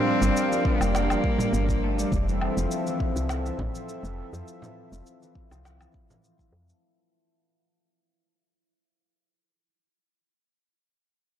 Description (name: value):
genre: organic downtempo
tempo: 102 BPM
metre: 4/4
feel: straight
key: unclear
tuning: A4 = 440 Hz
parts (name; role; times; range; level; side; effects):
- bright cello; melody; 0.0-2.1 s; A3 to C4; -30 LUFS; left 2 dB; ping-pong delay
- warm analog pad; sustained chords; 0.0-6.8 s; C4 to F5; -30 LUFS; right 1 dB; chorus, sidechain pumping
- concert harp; arpeggios; 0.0-10.0 s; E3 to E4; -31 LUFS; left 1 dB; low-pass filter, ping-pong delay
- woody FM bass; bass; 0.2-6.7 s; F1 to F2; -28 LUFS; equal; tube saturation
- electronic cabasa, woodblock and snare drum; drums; 0.2-6.8 s; none; -34 LUFS; equal; none
- electronic kick drum; drums; 0.7-6.5 s; none; -28 LUFS; equal; none
- frame drum; percussion; 1.4-6.2 s; none; -34 LUFS; right 2 dB; none
room: light reverb, digital ambience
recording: blown-out, overdriven recording, overdrive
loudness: -23 LUFS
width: side -10 dB against mid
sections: 0.0-6.8 A section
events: fade-out 0.0-6.8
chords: 0.0 Gm7; 2.1 Fmaj7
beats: 0.35 0.94 1.53 | 2.12 2.71 3.30 3.88 | 4.47 5.06 5.65 6.24